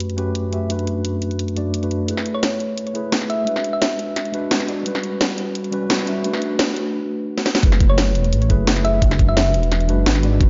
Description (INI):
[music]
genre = liquid drum and bass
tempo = 173 BPM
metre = 4/4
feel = straight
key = F# minor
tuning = A4 = 440 Hz
[part]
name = mellow tine electric piano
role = accompaniment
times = 0.0-10.5 s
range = F#2 to E5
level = -25 LUFS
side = equal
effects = low-pass filter, analog delay
[part]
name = drum and bass drum kit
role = drums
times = 0.0-10.5 s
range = hi-hat, snare drum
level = -24 LUFS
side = equal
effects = none
[part]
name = dark detuned saw bass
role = bass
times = 2.1-10.5 s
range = E1 to A1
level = -23 LUFS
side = equal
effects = high-pass filter
[part]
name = thumb-piano-like synth pluck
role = melody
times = 2.3-4.0, 7.9-9.5 s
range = C#5 to E5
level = -27 LUFS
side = equal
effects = chorus, analog delay
[part]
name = electronic kick drum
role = drums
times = 7.6-10.5 s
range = none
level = -18 LUFS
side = equal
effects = none
[sound]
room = moderate lush hall reverb, RT60 1.6 s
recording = dreamy mix soaked in reverb, nothing above 7.5 kHz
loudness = -20 LUFS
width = mono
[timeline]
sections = 0.0-2.1 A section; 2.1-7.6 B section; 7.6-10.5 C section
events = build-up 2.1-7.6; drum fill 7.4; drop 7.6-10.5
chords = 0.0 A13/F#; 0.7 D6/F#; 2.1 F#m11; 3.5 G#m7b5; 4.9 A13; 6.2 D6; 7.6 F#m11; 9.0 G#m7b5